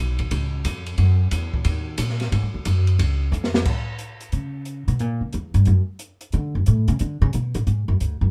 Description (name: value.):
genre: jazz, small-group swing and bop.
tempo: 180 BPM.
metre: 4/4.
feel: swing 65% on 8ths.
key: unclear.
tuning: A4 = 441 Hz.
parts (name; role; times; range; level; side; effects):
upright bass; bass; 0.0-8.3 s; B1 to D3; -22 LUFS; equal; none.
open jazz drum kit; drums; 0.2-8.1 s; crash cymbal, hi-hat, kick drum, ride cymbal, snare drum; -30 LUFS; equal; none.
room: light reverb.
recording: none.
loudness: -22 LUFS.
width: mono.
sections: 0.0-3.7 A section; 3.7-8.3 B section.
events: drum fill 3.3-3.7; upright bass solo 3.7-8.3.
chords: none.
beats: 0.32 0.65 | 0.98 1.32 1.65 1.99 | 2.32 2.66 2.99 3.32 | 3.66 3.99 4.33 4.66 | 5.00 5.33 5.66 6.00 | 6.33 6.67 7.00 7.34 | 7.67 8.01.